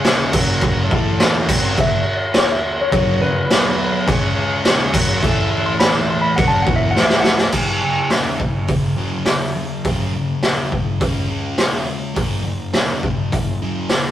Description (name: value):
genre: garage rock duo or trio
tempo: 104 BPM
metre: 4/4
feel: straight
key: unclear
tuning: A4 = 440 Hz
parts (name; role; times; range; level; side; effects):
- clean lap steel guitar; melody; 0.0-7.5 s; B4 to B#5; -21 LUFS; left 1 dB; none
- overdriven combo organ; sustained chords; 0.0-7.5 s; A3 to E5; -26 LUFS; right 1 dB; none
- thick fuzz guitar; riff; 0.0-14.1 s; E2 to C#4; -22 LUFS; left 1 dB; distortion
- raw garage drum kit; drums; 0.0-14.0 s; crash cymbal, hi-hat, kick drum, snare drum; -17 LUFS; equal; none
room: light reverb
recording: rough rehearsal-room recording, tube saturation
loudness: -15 LUFS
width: side -12 dB against mid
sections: 0.0-7.5 A section; 7.5-14.1 B section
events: electric slide guitar solo 0.0-7.5; drum fill 7.0-7.5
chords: 0.3 F#; 0.9 A5; 1.5 F#; 3.5 B5; 4.1 C#5; 4.9 F#; 5.2 A5; 6.4 F#; 7.0 A5; 7.5 F#5; 11.0 C#5; 12.2 F#5